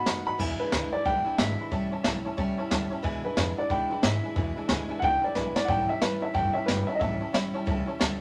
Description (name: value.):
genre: rockabilly.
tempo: 181 BPM.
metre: 4/4.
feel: swing 62% on 8ths.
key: E mixolydian.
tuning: A4 = 439 Hz.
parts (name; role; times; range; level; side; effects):
dark upright piano; melody; 0.0-8.0 s; B4 to B5; -30 LUFS; equal; none.
picked steel-string acoustic guitar; accompaniment; 0.0-8.2 s; E2 to F#4; -35 LUFS; equal; none.
honky-tonk upright piano; accompaniment; 0.1-8.1 s; B4 to B5; -40 LUFS; equal; none.
upright bass; bass; 0.1-8.2 s; F#1 to G#2; -36 LUFS; equal; none.
jazz brush drum kit; drums; 0.1-8.1 s; crash cymbal, hi-hat, kick drum, snare drum; -32 LUFS; equal; none.
room: moderate studio reverb, RT60 0.9 s.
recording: none.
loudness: -28 LUFS.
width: mono.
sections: 0.4-8.2 A section.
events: drum fill 5.4-5.7.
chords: 0.4 E7; 1.7 A7; 3.0 E7; 5.7 A7.